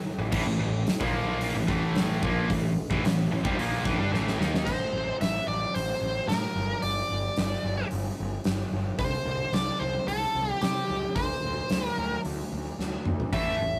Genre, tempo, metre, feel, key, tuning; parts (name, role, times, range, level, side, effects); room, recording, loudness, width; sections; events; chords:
hard rock; 111 BPM; 4/4; straight; A phrygian; A4 = 441 Hz
heavy high-gain guitar; riff; 0.2-4.7, 13.3-13.6 s; A2 to D#4; -33 LUFS; equal; distortion
overdriven electric guitar; riff; 0.2-4.7, 13.3-13.6 s; A2 to D#4; -37 LUFS; equal
fuzz picked electric bass; bass; 0.2-13.8 s; G1 to C3; -34 LUFS; equal; overdrive
heavy high-gain guitar; riff; 0.3-4.7 s; A2 to D#4; -39 LUFS; equal; distortion
huge arena drum kit; drums; 0.3-13.5 s; crash cymbal, hi-hat, kick drum, snare drum, toms; -33 LUFS; equal
smooth overdriven lead guitar; melody; 4.7-13.8 s; G4 to E5; -32 LUFS; equal
moderate studio reverb, RT60 0.5 s; rough rehearsal-room recording, warm saturation; -28 LUFS; mono
0.0-4.7 A section; 4.7-13.8 B section
drum fill 4.1-4.7, 12.8-13.3
0.0 A5; 1.0 Bb5; 1.6 Am; 6.6 G5; 9.0 C5; 11.2 Csus2/D